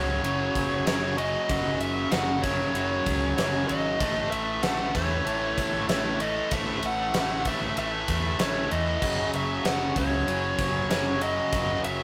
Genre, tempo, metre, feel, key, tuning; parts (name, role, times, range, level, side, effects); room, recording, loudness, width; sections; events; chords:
hard rock; 96 BPM; 4/4; straight; A4 = 440 Hz
dark smooth lead guitar; melody; 0.0-12.0 s; C#5 to F#5; -31 LUFS; equal; overdrive
tonewheel organ; sustained chords; 0.0-12.0 s; D#3 to B4; -40 LUFS; equal
distorted electric guitar; riff; 0.0-12.0 s; F#2 to A3; -38 LUFS; equal
heavy high-gain guitar; riff; 0.0-12.0 s; F#2 to A3; -36 LUFS; equal; distortion
overdriven electric guitar; riff; 0.0-12.0 s; F#2 to A3; -34 LUFS; equal
hollow-body short-scale fingered electric bass; bass; 0.0-12.0 s; F#1 to E2; -36 LUFS; equal
gated 80s drum kit; drums; 0.2-12.0 s; crash cymbal, kick drum, ride cymbal, snare drum; -33 LUFS; equal
moderate studio reverb, RT60 0.6 s; rough rehearsal-room recording; -26 LUFS; mono
0.0-12.0 A section
0.0 F#5; 4.0 A; 9.0 F#